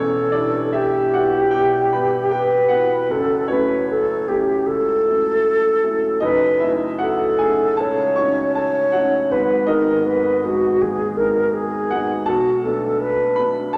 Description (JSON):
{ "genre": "classical, impressionist duo for flute and grand piano", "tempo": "79 BPM", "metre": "4/4", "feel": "uneven beats, rubato", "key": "unclear", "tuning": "A4 = 440 Hz", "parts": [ { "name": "mellow hollow silver concert flute", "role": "melody", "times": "0.0-13.5 s", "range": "F#4 to C#5", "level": "-20 LUFS", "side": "equal", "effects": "none" }, { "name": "warm baby grand piano", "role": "accompaniment", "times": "0.0-13.8 s", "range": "E1 to C#6", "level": "-24 LUFS", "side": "equal", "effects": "none" } ], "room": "wet recital hall reverb, RT60 1.7 s", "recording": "none", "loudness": "-19 LUFS", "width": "mono", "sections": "0.0-13.8 A section", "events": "none", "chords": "0.0 Em6; 3.1 F#m7; 6.2 F#m6; 9.3 G#m7; 12.3 Bm7" }